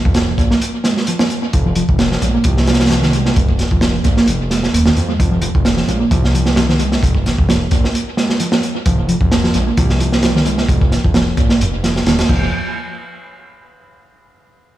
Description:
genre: breakbeat, breaks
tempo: 131 BPM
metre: 4/4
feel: swing 54% on 16ths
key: F minor pentatonic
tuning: A4 = 440 Hz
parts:
  - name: hollow-body short-scale picked electric bass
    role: riff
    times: 0.1-12.5 s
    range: Eb3 to Bb3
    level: -20 LUFS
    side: right 1 dB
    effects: tube saturation, tape echo
  - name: fat analog bass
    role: bass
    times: 0.1-12.5 s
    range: Eb1 to F2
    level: -18 LUFS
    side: equal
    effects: none
  - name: crunchy breakbeat drum kit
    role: drums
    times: 0.1-12.4 s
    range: crash cymbal, hi-hat, kick drum, snare drum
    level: -15 LUFS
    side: right 1 dB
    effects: tape echo
room: light reverb, small room ambience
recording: echo-heavy mix, studio reverb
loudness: -12 LUFS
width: side -14 dB against mid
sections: 0.0-12.5 A section; 12.5-14.4 B section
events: drop 0.0-12.5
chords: 0.0 Fm; 12.3 N.C.

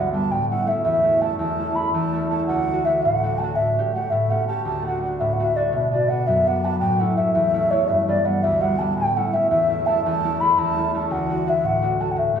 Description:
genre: celtic folk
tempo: 111 BPM (dotted quarters)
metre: 6/8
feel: straight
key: D major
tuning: A4 = 439 Hz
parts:
  - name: mellow hollow baroque flute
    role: melody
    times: 0.0-12.4 s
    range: C#5 to B5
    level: -20 LUFS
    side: equal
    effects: none
  - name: concert harp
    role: accompaniment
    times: 0.0-12.4 s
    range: D2 to G4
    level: -23 LUFS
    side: equal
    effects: none
room: wet recital hall reverb, RT60 1.6 s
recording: recorded in a church or concert hall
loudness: -18 LUFS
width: side -7 dB against mid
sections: 0.0-5.7 A section; 5.7-12.4 A section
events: none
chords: 0.3 A; 2.5 D; 3.6 A7sus4; 4.1 A7; 4.7 D; 5.7 Bm; 6.8 A; 7.9 G; 9.0 A; 11.1 D

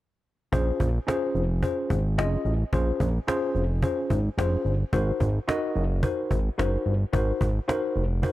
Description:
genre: early-eighties boogie funk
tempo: 109 BPM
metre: 4/4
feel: straight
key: Bb minor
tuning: A4 = 440 Hz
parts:
  - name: tine electric piano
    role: accompaniment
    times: 0.5-8.3 s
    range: Db4 to Eb5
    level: -28 LUFS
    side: left 1 dB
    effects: medium stereo tremolo
  - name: fat analog bass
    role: bass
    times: 0.5-8.2 s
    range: F1 to Bb1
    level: -25 LUFS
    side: equal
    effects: none
  - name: cajon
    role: drums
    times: 0.5-8.3 s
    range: none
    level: -28 LUFS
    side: equal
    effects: none
room: little or no reverb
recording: none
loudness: -23 LUFS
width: side -16 dB against mid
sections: 0.5-8.3 A section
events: none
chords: 0.5 Bbm7; 4.9 Ab9

